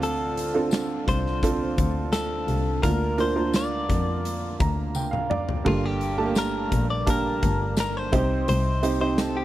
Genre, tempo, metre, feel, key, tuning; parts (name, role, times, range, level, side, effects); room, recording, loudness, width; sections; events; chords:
piano-driven pop; 85 BPM; 4/4; straight; G minor; A4 = 440 Hz
direct-recorded clean electric guitar; melody; 0.0-9.4 s; F4 to D5; -29 LUFS; left 3 dB; tape echo
clear upright piano; accompaniment; 0.0-9.4 s; G2 to Bb5; -26 LUFS; right 4 dB
muted double bass; bass; 0.0-9.4 s; G1 to F2; -28 LUFS; left 1 dB
huge arena drum kit; drums; 0.0-9.3 s; crash cymbal, hi-hat, kick drum, snare drum, toms; -28 LUFS; left 1 dB
tambourine; percussion; 0.7-9.3 s; -39 LUFS; left 14 dB
little or no reverb; -22 LUFS; side -14 dB against mid
0.0-9.4 A section
upright piano fill 4.2-5.7; drum fill 5.0-5.7
0.0 Dm7; 2.8 Bb/D; 5.7 Gmadd9; 8.1 Cm